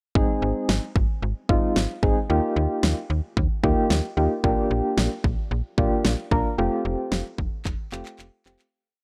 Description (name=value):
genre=synth-pop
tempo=112 BPM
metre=4/4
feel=straight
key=unclear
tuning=A4 = 435 Hz
part: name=soft electric-piano-like synth keys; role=accompaniment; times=0.2-8.6 s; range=Ab3 to Bb4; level=-26 LUFS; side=equal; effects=chorus, tremolo
part: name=slap-like FM bass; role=bass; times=0.2-8.6 s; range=F1 to Eb2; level=-28 LUFS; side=equal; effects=none
part: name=pop drum kit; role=drums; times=0.2-8.7 s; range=handclaps, kick drum, snare drum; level=-26 LUFS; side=equal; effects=none
room=little or no reverb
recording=dry, gritty hardware recording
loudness=-24 LUFS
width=mono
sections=0.2-8.7 verse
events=fade-out 6.6-8.7; drum fill 7.7-8.7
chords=0.2 Ab; 2.3 Ebadd9; 4.4 Bb6; 6.6 Fadd9